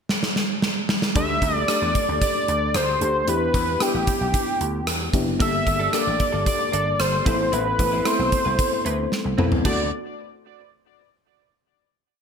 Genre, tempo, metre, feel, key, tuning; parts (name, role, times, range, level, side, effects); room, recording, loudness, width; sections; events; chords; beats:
1980s-style pop; 113 BPM; 4/4; straight; A4 = 440 Hz
gated 80s drum kit; drums; 0.1-9.8 s; crash cymbal, hi-hat, kick drum, rim click, snare drum, toms; -24 LUFS; right 1 dB; gated reverb
mellow FM electric piano; accompaniment; 1.1-9.9 s; A3 to A4; -27 LUFS; left 3 dB; chorus
octave-doubled lead; melody; 1.2-9.9 s; G4 to E5; -23 LUFS; equal; chorus, ping-pong delay
vintage slap bass; bass; 1.2-9.9 s; F#1 to E2; -27 LUFS; equal
direct-recorded clean electric guitar; riff; 5.4-9.8 s; A3 to B4; -32 LUFS; right 3 dB; analog chorus, ping-pong delay
moderate plate reverb, RT60 1.1 s; bright 1980s-style digital production; -19 LUFS; side -6 dB against mid
0.0-1.2 pickup bar; 1.2-9.7 verse; 9.7-11.8 final chord
drum fill 0.1-1.2, 9.1-9.7
0.0 N.C.; 1.2 Dsus4; 3.3 Em7; 5.4 Gmadd9; 7.3 Amadd9; 9.7 D
0.09 0.62 | 1.16 1.69 2.22 2.75 | 3.28 3.81 4.34 4.87 | 5.40 5.93 6.46 7.00 | 7.53 8.06 8.59 9.12 | 9.65